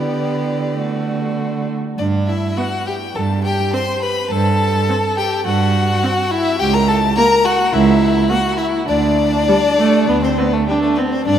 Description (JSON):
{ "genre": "quick classical-period movement for string quartet", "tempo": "103 BPM", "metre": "4/4", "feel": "uneven beats, rubato", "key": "G major", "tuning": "A4 = 442 Hz", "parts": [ { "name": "rich violin", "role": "melody", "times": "0.0-11.4 s", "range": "G4 to C6", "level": "-21 LUFS", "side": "left 5 dB", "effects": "none" }, { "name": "rich violin", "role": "second line", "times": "0.0-11.3 s", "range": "G3 to C5", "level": "-19 LUFS", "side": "left 2 dB", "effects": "none" }, { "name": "clear viola", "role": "accompaniment", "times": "0.0-11.4 s", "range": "G3 to D4", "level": "-22 LUFS", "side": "right 3 dB", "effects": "none" }, { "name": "rich cello", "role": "bass", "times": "0.0-11.4 s", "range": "C#2 to D3", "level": "-19 LUFS", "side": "right 4 dB", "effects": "none" } ], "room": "wet cathedral reverb, RT60 5.9 s", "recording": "in a vast, echoing space", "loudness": "-14 LUFS", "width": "side -9 dB against mid", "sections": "0.0-2.0 A section; 2.0-11.4 B section", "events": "none", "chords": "0.0 G/D; 0.8 D; 2.0 G5; 3.2 N.C.; 6.6 A6b9/C# (rootless); 8.9 N.C.; 10.1 Amadd9/D" }